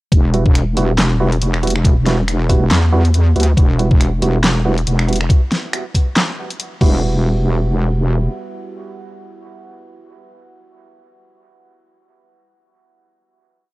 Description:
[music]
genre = deep dubstep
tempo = 139 BPM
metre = 4/4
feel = swing 57% on 16ths, half-time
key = E minor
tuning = A4 = 443 Hz
[part]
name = wobble bass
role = bass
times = 0.1-8.3 s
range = E1 to E2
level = -15 LUFS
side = equal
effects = chorus
[part]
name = dubstep drum kit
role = drums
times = 0.1-6.9 s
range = crash cymbal, finger snaps, handclaps, hi-hat, snare drum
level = -19 LUFS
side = equal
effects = overdrive
[part]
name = electronic kick drum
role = drums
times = 0.1-6.9 s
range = none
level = -12 LUFS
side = equal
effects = none
[part]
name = percussive organ stab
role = stabs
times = 0.3-10.3 s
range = G3 to F#4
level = -22 LUFS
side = right 3 dB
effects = chorus, dub echo
[sound]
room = little or no reverb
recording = dry, gritty hardware recording, transformer saturation, cassette tape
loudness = -13 LUFS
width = side -19 dB against mid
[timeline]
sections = 0.1-7.0 drop; 7.0-10.5 final hit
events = drop 0.1-7.0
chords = 0.1 Emadd9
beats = | 0.12 0.55 0.98 1.41 | 1.84 2.28 2.71 3.14 | 3.57 4.00 4.43 4.87 | 5.30 5.73 6.16 6.59 | 7.03 7.46 7.89 8.32 | 8.75 9.18 9.62 10.05

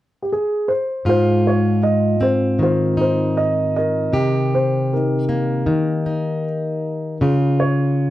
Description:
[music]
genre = folk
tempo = 78 BPM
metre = 4/4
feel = straight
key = Ab major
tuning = A4 = 444 Hz
[part]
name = dark upright piano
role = melody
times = 0.2-8.1 s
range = Eb4 to Eb5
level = -20 LUFS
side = right 1 dB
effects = none
[part]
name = fingerpicked plugged-in steel-string acoustic guitar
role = accompaniment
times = 1.1-8.1 s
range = Ab2 to G4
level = -18 LUFS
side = equal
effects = none
[sound]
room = light reverb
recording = dark, warm production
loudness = -16 LUFS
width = side -14 dB against mid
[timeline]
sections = 0.0-1.1 A section; 1.1-8.1 B section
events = none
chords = 0.0 N.C.; 1.1 Ab6; 4.1 Cm7; 7.2 Db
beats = 0.28 | 1.05 1.82 2.59 3.36 | 4.13 4.91 5.68 6.45 | 7.22 7.99

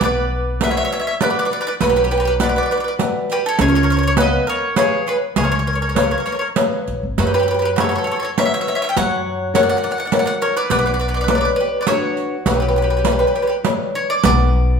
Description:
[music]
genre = italian folk, Italian serenade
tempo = 101 BPM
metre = 3/4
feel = rubato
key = B minor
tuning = A4 = 440 Hz
[part]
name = bowl-back mandolin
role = melody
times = 0.0-14.8 s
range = B4 to G5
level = -20 LUFS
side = right 2 dB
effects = none
[part]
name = bowl-back mandolin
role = second line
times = 0.0-13.6 s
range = F#4 to E5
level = -25 LUFS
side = right 3 dB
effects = none
[part]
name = flamenco guitar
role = accompaniment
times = 0.0-14.8 s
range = F#3 to E#5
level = -21 LUFS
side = left 3 dB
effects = none
[part]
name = upright bass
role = bass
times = 0.0-14.8 s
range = G#1 to F#2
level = -21 LUFS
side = left 1 dB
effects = none
[part]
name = riq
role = percussion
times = 0.0-14.5 s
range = none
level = -21 LUFS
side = right 3 dB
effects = none
[sound]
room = wet large studio reverb, RT60 1.1 s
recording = band playing live in one room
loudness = -15 LUFS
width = side -6 dB against mid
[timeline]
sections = 0.0-14.2 A section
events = none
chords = 0.0 Bm; 3.6 C#7; 7.2 F#sus4; 9.0 F#; 10.7 Bmadd9; 14.2 Bm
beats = | 0.01 0.62 1.22 | 1.81 2.41 3.00 | 3.59 4.18 4.77 | 5.37 5.96 6.57 | 7.18 7.78 8.38 | 8.97 9.55 10.13 | 10.71 11.29 11.87 | 12.46 13.05 13.65 | 14.25

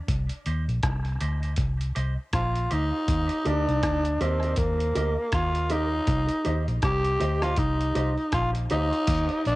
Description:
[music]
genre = dub reggae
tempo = 80 BPM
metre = 4/4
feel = swing 59% on 16ths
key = unclear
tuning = A4 = 442 Hz
[part]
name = vintage muted fingered electric bass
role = bass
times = 0.1-9.6 s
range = Bb1 to Eb2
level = -27 LUFS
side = equal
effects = none
[part]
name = dusty soul sampler-style drum kit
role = drums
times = 0.1-9.6 s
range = crash cymbal, hi-hat, kick drum, rim click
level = -29 LUFS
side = equal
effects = cassette tape
[part]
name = mellow electric guitar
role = accompaniment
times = 0.5-8.9 s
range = G4 to Eb5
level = -35 LUFS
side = right 3 dB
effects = high-pass filter, cassette tape, tape echo
[part]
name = growling tenor saxophone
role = melody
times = 2.3-9.6 s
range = Bb3 to G4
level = -26 LUFS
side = equal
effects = cassette tape, tape echo
[sound]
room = light reverb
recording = home recording on cassette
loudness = -23 LUFS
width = side -19 dB against mid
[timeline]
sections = 0.0-9.1 A section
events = none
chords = 0.1 Cm; 3.1 Eb; 6.1 Cm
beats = | 0.08 0.83 1.58 2.33 | 3.08 3.83 4.58 5.33 | 6.08 6.83 7.58 8.33 | 9.08

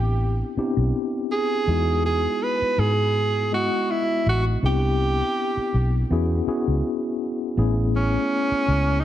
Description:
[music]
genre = lush 1970s-style soul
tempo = 81 BPM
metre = 4/4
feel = swing 54% on 16ths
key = E major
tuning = A4 = 441 Hz
[part]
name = breathy tenor saxophone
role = melody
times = 0.0-9.0 s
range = C#4 to B4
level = -24 LUFS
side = right 2 dB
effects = slapback echo
[part]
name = mellow tine electric piano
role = accompaniment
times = 0.0-9.0 s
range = G#3 to D#5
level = -26 LUFS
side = left 3 dB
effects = medium stereo tremolo
[part]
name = vintage muted fingered electric bass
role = bass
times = 0.0-9.0 s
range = A1 to G#2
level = -22 LUFS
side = equal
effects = none
[sound]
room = light reverb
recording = none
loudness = -20 LUFS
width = side -12 dB against mid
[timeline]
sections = 0.0-7.6 A section; 7.6-9.0 B section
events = none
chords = 0.0 Cmaj9; 1.7 Emaj7; 4.6 Cmaj9; 6.1 E69; 7.6 Amaj7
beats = 0.20 0.94 | 1.68 2.42 3.15 3.89 | 4.63 5.37 6.11 6.84 | 7.58 8.32

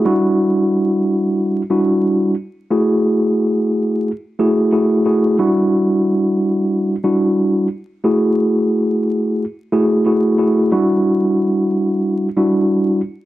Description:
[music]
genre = hip hop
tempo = 90 BPM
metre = 4/4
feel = swing 60% on 16ths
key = unclear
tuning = A4 = 440 Hz
[part]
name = mellow tine electric piano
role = solo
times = 0.0-13.0 s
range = G3 to G#4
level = -14 LUFS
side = equal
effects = medium stereo tremolo, cassette tape, high-pass filter, low-pass filter
[sound]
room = moderate studio reverb, RT60 0.6 s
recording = dry, gritty hardware recording, vinyl crackle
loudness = -14 LUFS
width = side -15 dB against mid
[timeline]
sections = 0.0-13.3 A section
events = none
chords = 0.1 Em9; 2.7 F#m9; 5.4 Em9; 8.1 F#m9; 10.7 Em9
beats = | 0.05 0.72 1.39 2.05 | 2.72 3.39 4.05 4.72 | 5.39 6.05 6.72 7.39 | 8.05 8.72 9.39 10.05 | 10.72 11.39 12.05 12.72

